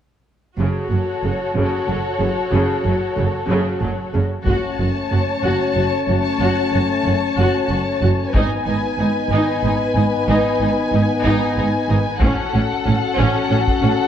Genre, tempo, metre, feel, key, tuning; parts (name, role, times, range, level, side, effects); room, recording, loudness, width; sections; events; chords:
cinematic, epic orchestral film score; 62 BPM (dotted quarters); 6/8; straight; F# dorian; A4 = 440 Hz
dark studio violin section; second line; 0.6-14.1 s; A4 to C#5; -25 LUFS; left 4 dB
rich symphonic viola section; accompaniment; 0.6-13.9 s; C#3 to F#4; -23 LUFS; equal
warm symphonic cello section; bass; 0.6-13.9 s; F#2 to A2; -23 LUFS; right 2 dB
warm symphonic double bass section; bass; 0.6-13.9 s; F#1 to A1; -23 LUFS; right 3 dB
warm symphonic violin section; melody; 4.5-14.1 s; F#5 to A5; -25 LUFS; left 3 dB
warm French horn section; sustained chords; 4.5-14.1 s; A3 to F#4; -23 LUFS; left 4 dB
taiko ensemble; drums; 4.5-14.0 s; -20 LUFS; equal
moderate concert hall reverb, RT60 1.7 s; worn, warbling old tape, cassette tape, warbly pitch drift; -16 LUFS; side -9 dB against mid
0.6-4.5 A section; 4.5-14.1 B section
build-up 4.5-14.1
0.6 F#m; 8.3 G#m; 12.2 F#m/A